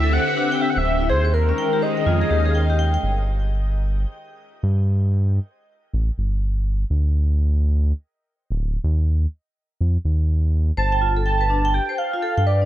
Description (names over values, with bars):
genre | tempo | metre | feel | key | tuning
IDM | 124 BPM | 4/4 | swing 62% on 16ths | unclear | A4 = 440 Hz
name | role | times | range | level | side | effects
warm velvety synth lead | melody | 0.0-2.8, 10.8-12.7 s | Bb4 to A5 | -23 LUFS | equal | chorus, shimmer reverb, tape echo
soft string machine | sustained chords | 0.0-3.0 s | D3 to F5 | -25 LUFS | equal | phaser, ensemble chorus, shimmer reverb
vibraphone with medium hard mallets | arpeggios | 0.0-3.0, 10.8-12.7 s | Db4 to G5 | -27 LUFS | left 2 dB | shimmer reverb, tape echo
round analog bass | bass | 0.0-12.7 s | D1 to G2 | -19 LUFS | equal | none
room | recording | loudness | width
light reverb, digital ambience | dark, warm production | -18 LUFS | side -13 dB against mid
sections
0.0-3.0 A section; 3.0-12.7 B section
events
none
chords
0.0 D9sus4; 1.1 Eb9sus4; 3.0 N.C.; 8.8 Ebsus2; 10.8 G7sus2